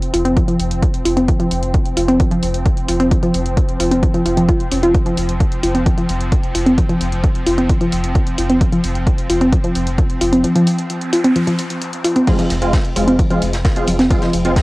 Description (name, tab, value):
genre	driving peak-time techno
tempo	131 BPM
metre	4/4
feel	straight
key	F minor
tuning	A4 = 436 Hz
part	swarming drone	drone	0.0-14.6 s	F3 to C4	-25 LUFS	equal	built-in reverb, sidechain pumping, cassette tape
part	punchy analog drum machine	drums	0.0-14.6 s	crash cymbal, hi-hat	-28 LUFS	equal	cassette tape
part	warbly dusty pluck	riff	0.1-14.3 s	F3 to F4	-17 LUFS	equal	chorus, cassette tape, sidechain pumping, tape echo
part	saturated sub bass	bass	0.1-14.6 s	F1	-21 LUFS	equal	tube saturation, sidechain pumping, low-pass filter
part	electronic kick drum	drums	0.4-14.6 s	none	-16 LUFS	equal	cassette tape
part	noise sweep	sound effects	10.8-12.3 s	none	-32 LUFS	equal	none
part	rave stab	stabs	12.3-14.6 s	Ab3 to F4	-19 LUFS	equal	chorus, built-in reverb, sidechain pumping, cassette tape, tape echo
part	jazz brush drum kit	drums	12.3-14.6 s	ride cymbal, snare drum	-29 LUFS	equal	high-pass filter on cymbals, cassette tape, high-pass filter on snare, high-pass filter on room
room	moderate studio reverb, RT60 0.7 s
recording	home recording on cassette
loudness	-13 LUFS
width	side -21 dB against mid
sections	0.0-14.6 A section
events	noise sweep 10.8-12.3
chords	0.0 Fm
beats	0.36 0.82 | 1.28 1.74 2.20 2.66 | 3.11 3.57 4.03 4.49 | 4.95 5.40 5.86 6.32 | 6.78 7.24 7.69 8.15 | 8.61 9.07 9.53 9.98 | 10.44 10.90 11.36 11.82 | 12.27 12.73 13.19 13.65 | 14.11 14.56